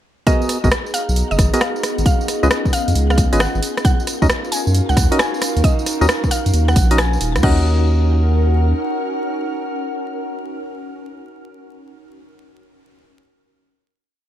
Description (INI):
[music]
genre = UK garage, two-step garage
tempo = 134 BPM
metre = 4/4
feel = swing 67% on 16ths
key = Eb minor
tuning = A4 = 443 Hz
[part]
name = mallet-like synth pluck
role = melody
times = 0.3-12.4 s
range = Eb5 to Ab5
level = -26 LUFS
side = equal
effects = chorus, ping-pong delay
[part]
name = ethereal airy pad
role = sustained chords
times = 0.8-11.8 s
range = Cb4 to F6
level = -28 LUFS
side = left 1 dB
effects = ensemble chorus, built-in reverb, sidechain pumping
[part]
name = percussive organ stab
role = stabs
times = 0.3-12.4 s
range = Cb4 to Eb5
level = -22 LUFS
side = equal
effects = chorus, ping-pong delay
[part]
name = electronic kick drum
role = drums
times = 0.3-7.5 s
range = none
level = -16 LUFS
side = equal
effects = none
[part]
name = house drum kit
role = drums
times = 0.3-7.5 s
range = crash cymbal, hi-hat, rim click, tambourine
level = -22 LUFS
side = equal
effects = none
[part]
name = warbly tape-like pad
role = texture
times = 0.8-11.8 s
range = Db4 to Bb5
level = -26 LUFS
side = equal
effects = chorus, built-in reverb, sidechain pumping
[part]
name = saturated sub bass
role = bass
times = 0.6-8.7 s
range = Eb1 to Gb2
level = -16 LUFS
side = equal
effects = none
[sound]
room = light reverb, digital ambience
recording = bright 1980s-style digital production, vinyl crackle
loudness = -15 LUFS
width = side -11 dB against mid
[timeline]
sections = 0.3-7.4 drop; 7.4-11.0 final chord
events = drop 0.3-7.4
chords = 0.3 Abm9; 2.1 Db9; 3.6 Ebm7